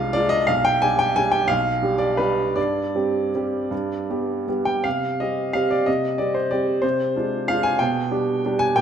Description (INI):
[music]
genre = classical, piano waltz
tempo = 152-200 BPM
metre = 3/4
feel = rubato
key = C minor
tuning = A4 = 440 Hz
[part]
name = clear upright piano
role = solo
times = 0.0-8.8 s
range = B1 to Ab5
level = -19 LUFS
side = right 1 dB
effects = none
[sound]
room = wet recital hall reverb, RT60 1.8 s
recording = none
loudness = -19 LUFS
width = side -8 dB against mid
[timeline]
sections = 0.0-4.8 A section; 4.8-8.8 B section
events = none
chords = 0.5 G7/B; 2.6 Gsus4; 3.7 G; 4.8 Cm; 6.8 Dm7b5/C; 7.8 G/B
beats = 0.15 | 0.48 0.82 1.16 | 1.49 1.82 2.19 | 2.56 2.95 3.34 | 3.71 4.09 4.48 | 4.85 5.20 5.54 | 5.87 6.18 6.51 | 6.83 7.16 7.49 | 7.80 8.11 8.44 | 8.76